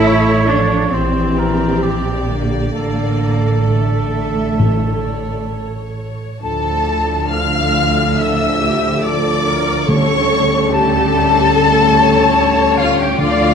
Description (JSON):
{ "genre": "classical, slow romantic movement for symphony orchestra", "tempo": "64-74 BPM", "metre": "4/4", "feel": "rubato", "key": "D minor", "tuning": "A4 = 440 Hz", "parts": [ { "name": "dark symphonic violin section", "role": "melody", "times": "0.0-13.5 s", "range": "C#5 to F6", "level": "-22 LUFS", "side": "left 4 dB", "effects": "none" }, { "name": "dark cor anglais", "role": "second line", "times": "0.0-5.9 s", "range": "G4 to C#5", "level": "-23 LUFS", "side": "right 3 dB", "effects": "none" }, { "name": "warm symphonic violin section", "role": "second line", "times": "0.0-13.5 s", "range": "F4 to F5", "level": "-22 LUFS", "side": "left 3 dB", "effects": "none" }, { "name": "warm symphonic viola section", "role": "accompaniment", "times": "0.0-13.5 s", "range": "G4 to D5", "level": "-22 LUFS", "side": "right 1 dB", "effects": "none" }, { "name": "mellow French horn section", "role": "sustained chords", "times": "0.0-13.5 s", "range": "D3 to D4", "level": "-21 LUFS", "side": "left 5 dB", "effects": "none" }, { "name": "rich symphonic cello section", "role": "bass", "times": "0.0-13.5 s", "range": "D3 to E4", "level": "-23 LUFS", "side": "right 3 dB", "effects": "none" }, { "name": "rich symphonic double bass section", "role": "bass", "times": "0.0-13.5 s", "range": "A1 to D2", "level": "-20 LUFS", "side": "right 3 dB", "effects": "none" }, { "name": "timpani", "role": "percussion", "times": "4.6-13.5 s", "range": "A2 to D3", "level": "-19 LUFS", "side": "equal", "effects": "none" }, { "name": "silver concert flute", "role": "second line", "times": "6.4-13.5 s", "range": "F5 to F6", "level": "-19 LUFS", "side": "left 3 dB", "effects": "none" }, { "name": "dark trombone section", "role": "sustained chords", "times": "6.4-13.5 s", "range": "A2 to G3", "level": "-23 LUFS", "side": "right 4 dB", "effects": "none" } ], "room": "moderate concert hall reverb, RT60 1.9 s", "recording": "none", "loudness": "-13 LUFS", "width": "side -6 dB against mid", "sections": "0.0-6.4 A section; 6.4-13.5 B section", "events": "none", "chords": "0.0 A; 0.9 Gm/Bb; 2.7 Dm/A; 4.6 A; 6.4 Dm; 9.9 A7/D" }